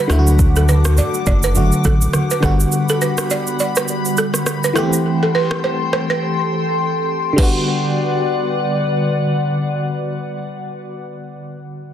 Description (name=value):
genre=afrobeats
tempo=103 BPM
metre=4/4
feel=swing 58% on 16ths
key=G major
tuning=A4 = 440 Hz
part: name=barking FM electric piano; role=accompaniment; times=0.0-11.9 s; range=D3 to G4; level=-20 LUFS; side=left 1 dB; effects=chorus, phaser, tremolo
part: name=glassy FM pad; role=sustained chords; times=0.0-10.5 s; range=G3 to D6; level=-23 LUFS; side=left 2 dB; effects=ensemble chorus, built-in reverb, sidechain pumping
part: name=balafon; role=riff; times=0.0-7.5 s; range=A4 to D5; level=-22 LUFS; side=right 4 dB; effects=tape echo
part: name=round analog bass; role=bass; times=0.1-2.7 s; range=F#1 to D2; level=-14 LUFS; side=equal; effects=none
part: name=afro-pop drum kit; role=drums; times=0.1-7.5 s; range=crash cymbal, kick drum, rim click, shaker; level=-20 LUFS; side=equal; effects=none
part: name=congas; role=percussion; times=0.1-2.6 s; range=none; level=-25 LUFS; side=right 1 dB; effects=none
room=light reverb, digital ambience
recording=dense, heavily limited modern master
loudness=-15 LUFS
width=side -10 dB against mid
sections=0.0-7.4 A section; 7.4-9.7 B section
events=drums muted 6.2-7.4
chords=0.1 D; 2.4 Gmaj7; 4.8 Am7; 7.4 Gmaj7